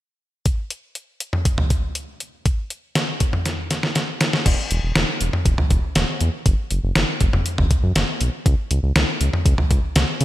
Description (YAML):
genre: synth-pop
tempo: 120 BPM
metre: 4/4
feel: straight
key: unclear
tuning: A4 = 438 Hz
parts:
  - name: detuned 8-bit digital drum machine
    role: drums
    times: 0.5-10.2 s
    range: crash cymbal, hi-hat, kick drum, snare drum, toms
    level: -19 LUFS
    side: equal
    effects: gated reverb
  - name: round analog bass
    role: bass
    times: 4.5-10.2 s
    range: E1 to C#3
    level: -20 LUFS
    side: equal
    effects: none
room: light reverb, digital ambience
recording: bright 1980s-style digital production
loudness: -18 LUFS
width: side -15 dB against mid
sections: 0.5-4.5 A section; 4.5-10.2 B section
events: drum fill 3.5-4.5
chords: none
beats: | 0.46 0.96 1.46 1.96 | 2.46 2.96 3.46 3.96 | 4.46 4.96 5.46 5.96 | 6.46 6.96 7.46 7.96 | 8.46 8.96 9.46 9.96